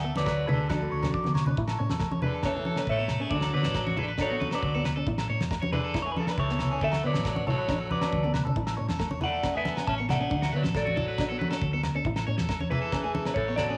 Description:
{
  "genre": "highlife guitar band",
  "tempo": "137 BPM",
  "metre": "4/4",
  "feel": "straight",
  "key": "A major",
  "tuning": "A4 = 441 Hz",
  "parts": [
    { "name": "clean electric guitar", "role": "melody", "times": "0.0-13.8 s", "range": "F#4 to A5", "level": "-34 LUFS", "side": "equal", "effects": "phaser, tape echo" },
    { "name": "raspy alto saxophone", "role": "second line", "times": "0.0-13.8 s", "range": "C#3 to C#4", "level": "-39 LUFS", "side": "equal", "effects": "none" },
    { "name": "fingerpicked steel-string acoustic guitar", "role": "accompaniment", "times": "0.0-13.8 s", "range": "A3 to E4", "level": "-39 LUFS", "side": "equal", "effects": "none" },
    { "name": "electric guitar at the edge of break-up", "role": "arpeggios", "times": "0.0-13.8 s", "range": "F#4 to D5", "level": "-38 LUFS", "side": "equal", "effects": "phaser, tape echo" },
    { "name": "hollow-body short-scale fingered electric bass", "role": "bass", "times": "0.0-13.7 s", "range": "A1 to D3", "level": "-34 LUFS", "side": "equal", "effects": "none" },
    { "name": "damped 70s drum kit", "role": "drums", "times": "0.2-13.7 s", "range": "kick drum, snare drum", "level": "-36 LUFS", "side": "equal", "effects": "none" },
    { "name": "congas", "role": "percussion", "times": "0.2-13.7 s", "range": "none", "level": "-34 LUFS", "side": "equal", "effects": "none" },
    { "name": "agogo bells", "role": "percussion", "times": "0.3-13.7 s", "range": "none", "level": "-42 LUFS", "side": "equal", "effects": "none" }
  ],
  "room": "light reverb",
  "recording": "home recording on cassette, studio reverb",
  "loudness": "-28 LUFS",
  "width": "mono",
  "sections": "0.0-1.6 A section; 1.6-13.8 B section",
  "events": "drum fill 1.1-1.6, 8.0-8.6",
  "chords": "0.0 D; 1.6 A; 3.3 D; 5.1 A; 6.8 D; 8.6 A; 10.3 D; 12.1 A"
}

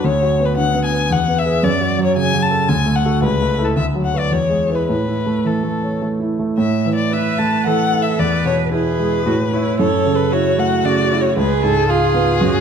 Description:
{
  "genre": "quick classical-period movement for piano trio",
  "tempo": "113 BPM",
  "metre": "3/4",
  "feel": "rubato",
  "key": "A major",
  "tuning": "A4 = 440 Hz",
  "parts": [
    { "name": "clear violin", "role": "melody", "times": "0.0-12.6 s", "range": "G#4 to A5", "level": "-20 LUFS", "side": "left 5 dB", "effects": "none" },
    { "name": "warm concert grand piano", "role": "accompaniment", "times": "0.0-12.6 s", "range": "C#2 to C#5", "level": "-17 LUFS", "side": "right 1 dB", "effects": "none" },
    { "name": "rich cello", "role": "second line", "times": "7.1-12.6 s", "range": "E4 to B4", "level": "-20 LUFS", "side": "right 8 dB", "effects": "none" }
  ],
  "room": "wet recital hall reverb, RT60 1.4 s",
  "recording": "dark, warm production",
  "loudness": "-15 LUFS",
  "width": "side -7 dB against mid",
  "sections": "0.0-6.6 A section; 6.6-12.6 B section",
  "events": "none",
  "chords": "0.0 Bm/D; 1.1 E; 1.6 F#m; 2.7 D; 3.2 A/C#; 3.8 Bm/D; 4.3 E; 4.9 A; 6.6 A5; 8.2 E; 9.3 A; 9.8 F#m7; 11.4 C#7"
}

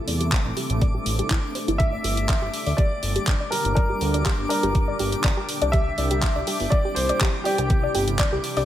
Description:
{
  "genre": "progressive house",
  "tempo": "122 BPM",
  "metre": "4/4",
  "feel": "straight",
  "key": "G dorian",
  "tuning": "A4 = 440 Hz",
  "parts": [
    { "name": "shimmering ambient pad", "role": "sustained chords", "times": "0.0-8.7 s", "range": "Bb2 to A4", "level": "-30 LUFS", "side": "equal", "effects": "chorus, built-in reverb, phaser, sidechain pumping" },
    { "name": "twinkling granular texture", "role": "texture", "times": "0.0-8.7 s", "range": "D6", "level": "-34 LUFS", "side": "equal", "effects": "built-in reverb, sidechain pumping" },
    { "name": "soft round pluck", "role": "arpeggios", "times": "0.1-8.7 s", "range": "E4 to D5", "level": "-29 LUFS", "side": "left 1 dB", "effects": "chorus, sidechain pumping, dub echo" },
    { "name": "fat analog bass", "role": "bass", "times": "0.1-8.7 s", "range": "G1 to E2", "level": "-26 LUFS", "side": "equal", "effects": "tube saturation, sidechain pumping" },
    { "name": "pop drum kit", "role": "drums", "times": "0.1-8.7 s", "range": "handclaps, hi-hat", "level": "-28 LUFS", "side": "equal", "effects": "overdrive" },
    { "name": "electronic kick drum", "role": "drums", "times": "0.3-8.3 s", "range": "none", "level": "-22 LUFS", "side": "equal", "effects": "overdrive" },
    { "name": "dark grand piano", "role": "melody", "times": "1.8-8.7 s", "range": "G4 to E5", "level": "-28 LUFS", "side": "equal", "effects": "dub echo" }
  ],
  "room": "light reverb, digital ambience",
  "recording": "none",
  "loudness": "-20 LUFS",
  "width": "side -12 dB against mid",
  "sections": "0.0-8.7 A section",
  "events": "filter sweep on synth pluck 0.0-8.7; filter sweep on ambient pad 0.0-8.7",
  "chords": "0.0 Am; 1.8 Gm; 5.7 Cadd9"
}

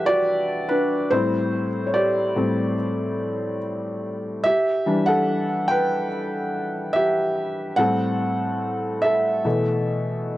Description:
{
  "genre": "R&B",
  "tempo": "72 BPM",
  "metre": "4/4",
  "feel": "straight",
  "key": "E minor",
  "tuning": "A4 = 437 Hz",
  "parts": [
    { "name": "felt-muted upright piano", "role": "solo", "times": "0.0-10.4 s", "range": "A2 to G5", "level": "-20 LUFS", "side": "equal", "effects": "none" }
  ],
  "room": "small room ambience",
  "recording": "dry, gritty hardware recording",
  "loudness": "-20 LUFS",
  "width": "side -16 dB against mid",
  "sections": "0.0-10.4 A section",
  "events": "felt piano solo 0.0-10.4",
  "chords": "0.0 Em7; 1.1 Am7; 4.4 Em7; 7.8 Am7; 9.4 B7sus4"
}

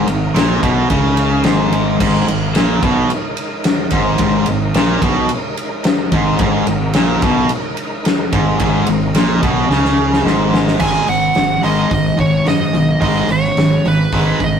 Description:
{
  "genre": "hard rock",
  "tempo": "109 BPM",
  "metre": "4/4",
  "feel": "straight",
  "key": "G# minor",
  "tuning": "A4 = 440 Hz",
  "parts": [
    { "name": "overdriven tonewheel organ", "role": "sustained chords", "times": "0.0-10.8 s", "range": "G#3 to A#4", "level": "-26 LUFS", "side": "equal", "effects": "slow rotary speaker, chorus vibrato" },
    { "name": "overdriven electric guitar", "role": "riff", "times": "0.0-14.6 s", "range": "G#2 to G#3", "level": "-18 LUFS", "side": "right 4 dB", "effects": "none" },
    { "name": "sludgy distorted guitar", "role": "riff", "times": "0.0-14.6 s", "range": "G#2 to G#3", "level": "-20 LUFS", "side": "left 8 dB", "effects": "overdrive" },
    { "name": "fuzz fingered electric bass", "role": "bass", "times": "0.0-14.6 s", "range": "G#1 to F#2", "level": "-19 LUFS", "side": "equal", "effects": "overdrive" },
    { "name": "big rock drum kit", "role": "drums", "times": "0.1-14.5 s", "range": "crash cymbal, hi-hat, kick drum, ride cymbal, snare drum", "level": "-18 LUFS", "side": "left 1 dB", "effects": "none" },
    { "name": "smooth overdriven lead guitar", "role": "melody", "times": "10.8-14.6 s", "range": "B4 to G#5", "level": "-18 LUFS", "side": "right 3 dB", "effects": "slapback echo" }
  ],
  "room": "moderate studio reverb, RT60 0.5 s",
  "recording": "rough rehearsal-room recording",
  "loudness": "-12 LUFS",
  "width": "side -7 dB against mid",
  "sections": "0.0-10.8 A section; 10.8-14.6 B section",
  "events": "drum fill 9.7-10.8",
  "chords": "0.0 G#m; 10.8 G#5"
}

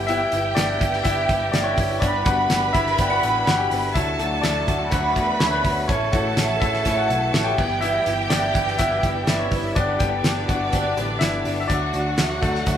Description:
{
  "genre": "piano-driven pop",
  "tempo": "124 BPM",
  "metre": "4/4",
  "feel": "straight",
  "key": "D major",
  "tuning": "A4 = 440 Hz",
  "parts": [
    { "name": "rich studio violin section", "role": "second line", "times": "0.0-12.8 s", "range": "D4 to B5", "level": "-25 LUFS", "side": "right 3 dB", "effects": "none" },
    { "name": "bright concert grand piano", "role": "accompaniment", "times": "0.0-12.8 s", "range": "D3 to G5", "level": "-24 LUFS", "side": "left 4 dB", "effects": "none" },
    { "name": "muted studio string section", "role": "sustained chords", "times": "0.0-12.8 s", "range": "C#3 to F#4", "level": "-32 LUFS", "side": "right 1 dB", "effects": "none" },
    { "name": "picked acoustic archtop guitar", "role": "riff", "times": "0.0-12.8 s", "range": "G2 to A4", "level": "-27 LUFS", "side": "right 3 dB", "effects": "none" },
    { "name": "vintage muted picked electric bass", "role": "bass", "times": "0.0-12.8 s", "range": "G1 to E2", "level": "-29 LUFS", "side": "equal", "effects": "none" },
    { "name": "damped 70s drum kit", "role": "drums", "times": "0.1-12.8 s", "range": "crash cymbal, hi-hat, kick drum, snare drum", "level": "-24 LUFS", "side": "equal", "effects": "none" }
  ],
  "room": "wet large studio reverb, RT60 0.9 s",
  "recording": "band playing live in one room",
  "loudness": "-18 LUFS",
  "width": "side -9 dB against mid",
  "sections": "0.0-12.8 A section",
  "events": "grand piano solo 0.0-12.8",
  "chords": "0.0 Em/G; 2.0 G; 4.0 D; 5.9 A; 7.6 Em/G; 9.8 G; 11.7 D"
}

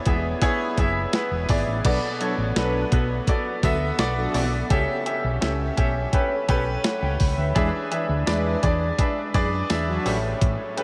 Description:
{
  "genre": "1980s-style pop",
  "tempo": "84 BPM",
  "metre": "4/4",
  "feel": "straight",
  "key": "B minor",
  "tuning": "A4 = 439 Hz",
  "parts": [
    { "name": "clear concert grand piano", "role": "accompaniment", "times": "0.0-10.8 s", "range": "A2 to G5", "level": "-27 LUFS", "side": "equal", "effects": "lush chorus" },
    { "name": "hollow-body short-scale fingered electric bass", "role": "bass", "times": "0.1-10.6 s", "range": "E1 to F#2", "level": "-29 LUFS", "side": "equal", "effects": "none" },
    { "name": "clean 12-bit digital drum machine", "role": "drums", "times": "0.1-10.8 s", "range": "crash cymbal, hi-hat, kick drum, snare drum, tambourine", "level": "-28 LUFS", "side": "equal", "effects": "none" },
    { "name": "mellow synth brass", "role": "stabs", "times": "1.8-10.2 s", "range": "E3 to B4", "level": "-34 LUFS", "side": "equal", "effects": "chorus" }
  ],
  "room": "moderate huge ambient reverb, RT60 7.8 s",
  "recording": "dreamy mix soaked in reverb",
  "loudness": "-23 LUFS",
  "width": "mono",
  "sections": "0.0-1.8 A section; 1.8-10.8 B section",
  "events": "none",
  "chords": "0.0 E7; 1.8 Bm7; 4.7 A7; 7.6 E7; 10.1 A7"
}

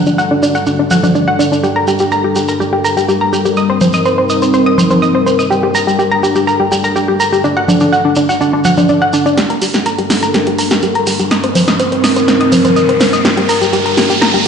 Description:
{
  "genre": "melodic techno",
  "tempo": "124 BPM",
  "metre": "4/4",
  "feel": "straight",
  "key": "G harmonic minor",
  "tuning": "A4 = 440 Hz",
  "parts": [
    { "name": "dark analog pad", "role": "sustained chords", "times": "0.0-14.5 s", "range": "G3 to Bb4", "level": "-16 LUFS", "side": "left 1 dB", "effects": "chorus, phaser" },
    { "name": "analog pluck", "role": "arpeggios", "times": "0.0-14.5 s", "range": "D4 to Eb6", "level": "-13 LUFS", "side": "equal", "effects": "chorus, dub echo" },
    { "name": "shekere", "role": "percussion", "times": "0.1-14.3 s", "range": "none", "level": "-24 LUFS", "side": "right 2 dB", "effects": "none" },
    { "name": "punchy analog drum machine", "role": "drums", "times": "0.9-14.4 s", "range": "congas, hi-hat, snare drum", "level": "-14 LUFS", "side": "equal", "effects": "overdrive" },
    { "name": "riser", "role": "sound effects", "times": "10.8-14.5 s", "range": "none", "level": "-20 LUFS", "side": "right 1 dB", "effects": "none" }
  ],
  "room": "moderate lush hall reverb, RT60 1.7 s, digital ambience",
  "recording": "played on a big sound system in a bare room, stone room reverb, nothing above 10.3 kHz",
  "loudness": "-10 LUFS",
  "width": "side -6 dB against mid",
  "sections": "0.0-9.4 A section; 9.4-14.5 B section",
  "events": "build-up 9.4-14.5; drum fill 9.4-14.5; riser 10.8-14.5",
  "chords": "0.0 D/G; 1.6 Gmadd9; 3.6 Cm7/G; 5.5 Gmadd9; 7.4 D/G; 9.4 Gmadd9; 11.3 Cm7/G; 13.2 Gmadd9"
}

